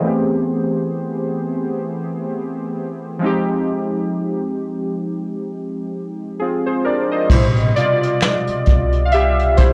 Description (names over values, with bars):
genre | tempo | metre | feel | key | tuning
lo-fi hip hop | 66 BPM | 4/4 | swing 57% on 16ths | A minor | A4 = 444 Hz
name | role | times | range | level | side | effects
warbly lo-fi synth keys | accompaniment | 0.0-9.7 s | B2 to F5 | -21 LUFS | equal | chorus, low-pass filter
upright bass | bass | 7.3-9.7 s | A1 to C2 | -21 LUFS | equal | transformer saturation
vintage brush drum kit | drums | 7.3-9.7 s | crash cymbal, hi-hat, kick drum, snare drum | -18 LUFS | equal | none
finger snap | percussion | 8.2-8.5 s | none | -31 LUFS | equal | none
room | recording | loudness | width
light reverb | worn, warbling old tape, cassette tape, warbly pitch drift | -19 LUFS | mono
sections
0.0-7.3 A section; 7.3-9.7 B section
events
synth keys solo 7.3-9.7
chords
0.0 Am7; 3.2 Fm7; 7.3 Am7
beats
| 0.03 0.94 1.85 2.76 | 3.67 4.58 5.49 6.39 | 7.30 8.21 9.12